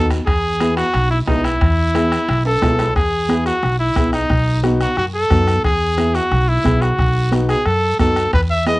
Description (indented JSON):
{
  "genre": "latin, cumbia",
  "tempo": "179 BPM",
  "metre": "4/4",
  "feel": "straight",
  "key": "E major",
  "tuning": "A4 = 441 Hz",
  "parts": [
    { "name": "bright trumpet", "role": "melody", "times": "0.0-8.8 s", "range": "D#4 to E5", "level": "-18 LUFS", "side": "equal", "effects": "cassette tape" },
    { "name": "warm upright piano", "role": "accompaniment", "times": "0.0-8.8 s", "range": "B3 to G#4", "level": "-22 LUFS", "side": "left 2 dB", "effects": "cassette tape" },
    { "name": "upright bass", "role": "bass", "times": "0.0-8.8 s", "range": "B1 to F#2", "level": "-19 LUFS", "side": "equal", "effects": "none" },
    { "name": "bombo", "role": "percussion", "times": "0.1-8.8 s", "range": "none", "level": "-22 LUFS", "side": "left 1 dB", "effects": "none" },
    { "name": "guiro", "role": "percussion", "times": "0.1-8.8 s", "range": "none", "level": "-36 LUFS", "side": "right 4 dB", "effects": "none" },
    { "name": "timbales", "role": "percussion", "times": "0.1-2.9, 8.3-8.8 s", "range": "none", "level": "-30 LUFS", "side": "right 4 dB", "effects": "none" },
    { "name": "congas", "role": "percussion", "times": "0.3-8.8 s", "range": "none", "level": "-24 LUFS", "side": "right 4 dB", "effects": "none" }
  ],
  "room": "light reverb",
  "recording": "home recording on cassette, nothing above 10.9 kHz",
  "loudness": "-14 LUFS",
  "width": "side -20 dB against mid",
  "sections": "0.0-3.0 A section; 3.0-8.8 A section",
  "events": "drum fill 2.5-3.0",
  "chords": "0.3 E; 4.3 B7; 5.6 E; 7.0 B7"
}